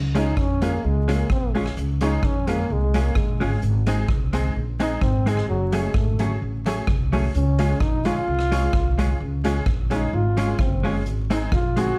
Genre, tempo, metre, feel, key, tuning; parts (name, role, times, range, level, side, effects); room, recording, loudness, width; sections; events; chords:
ska; 129 BPM; 4/4; swing 54% on 8ths; Db major; A4 = 442 Hz
upright bass; bass; 0.0-11.9 s; Gb1 to F2; -26 LUFS; equal
clean electric guitar; accompaniment; 0.1-11.9 s; Gb3 to Ab4; -30 LUFS; equal; spring reverb
honky-tonk upright piano; stabs; 0.1-11.9 s; Ab3 to Ab4; -32 LUFS; equal
warm trombone; melody; 0.2-12.0 s; Gb3 to Gb4; -29 LUFS; equal; slapback echo
street-band drum kit; drums; 0.2-11.9 s; hi-hat, kick drum, rim click; -28 LUFS; equal
light reverb, studio ambience; dark, warm production, vinyl crackle; -22 LUFS; mono
0.0-12.0 A section
trombone solo 0.0-12.0
0.0 Db; 3.6 Ab; 5.5 Gbmadd9; 7.3 Db; 11.1 Ab